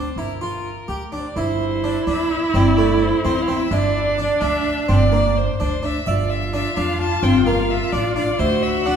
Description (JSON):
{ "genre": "contemporary instrumental, chamber music in an uneven meter", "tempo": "256 BPM (eighths)", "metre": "5/8", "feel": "straight", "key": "unclear", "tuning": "A4 = 440 Hz", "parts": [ { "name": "clear violin", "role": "melody", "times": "0.0-9.0 s", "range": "Bb4 to A5", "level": "-24 LUFS", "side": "left 1 dB", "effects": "none" }, { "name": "harpsichord", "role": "arpeggios", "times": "0.0-9.0 s", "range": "A3 to E5", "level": "-24 LUFS", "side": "left 2 dB", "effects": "none" }, { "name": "upright bass", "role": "bass", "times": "0.0-9.0 s", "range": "G1 to F2", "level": "-22 LUFS", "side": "right 2 dB", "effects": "none" }, { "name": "rich viola", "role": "second line", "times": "1.4-9.0 s", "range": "D4 to F#4", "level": "-22 LUFS", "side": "right 2 dB", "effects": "none" } ], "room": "wet recital hall reverb, RT60 1.6 s", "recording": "heard from further back in the room", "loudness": "-17 LUFS", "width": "side -8 dB against mid", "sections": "0.0-1.4 A section; 1.4-9.0 B section", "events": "none", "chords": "0.0 Gm7; 1.4 Am/G (rootless); 3.7 G5; 6.1 Bb/G (rootless); 8.4 D7" }